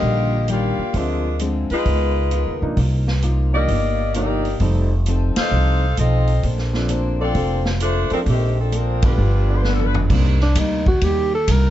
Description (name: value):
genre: jazz, big band swing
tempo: 131 BPM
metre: 4/4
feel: swing 66% on 8ths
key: unclear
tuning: A4 = 440 Hz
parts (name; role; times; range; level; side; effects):
- warm saxophone section; melody; 0.0-10.0 s; Eb3 to F5; -23 LUFS; left 2 dB; none
- picked steel-string acoustic guitar; accompaniment; 0.0-11.7 s; G2 to C5; -28 LUFS; left 4 dB; none
- warm grand piano; accompaniment; 0.0-10.4 s; D3 to E5; -27 LUFS; right 2 dB; none
- upright bass; bass; 0.0-11.7 s; F1 to Eb2; -19 LUFS; equal; none
- swinging big-band drum kit; drums; 0.5-11.6 s; crash cymbal, hi-hat, kick drum, ride cymbal, snare drum, toms; -24 LUFS; equal; none
- breathy alto saxophone; melody; 10.4-11.7 s; D4 to Bb4; -20 LUFS; right 2 dB; none
room: light reverb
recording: nothing above 7.8 kHz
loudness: -16 LUFS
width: side -12 dB against mid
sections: 0.0-10.1 A section; 10.1-11.7 B section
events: band accent 5.3, 9.0; drum fill 9.6-10.1; alto saxophone solo 10.1-11.7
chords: 0.0 Ebmaj9; 0.9 Dm7b5; 1.9 Db13; 2.8 Cm11; 4.6 F7; 6.4 Bbmaj9; 9.2 G7; 10.1 Cm7